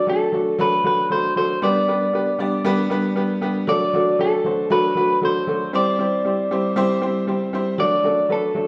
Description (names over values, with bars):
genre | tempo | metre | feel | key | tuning
soul | 117 BPM | 4/4 | straight | D mixolydian | A4 = 438 Hz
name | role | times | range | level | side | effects
electric guitar through a small old amp | melody | 0.0-8.7 s | A4 to D5 | -23 LUFS | equal | none
clear upright piano | accompaniment | 0.0-8.7 s | F#3 to D5 | -23 LUFS | equal | none
room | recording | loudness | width
wet large studio reverb, RT60 1.3 s | band playing live in one room | -20 LUFS | mono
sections
0.0-8.7 A section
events
none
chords
0.0 D; 1.6 G; 3.7 D; 5.7 C; 7.8 D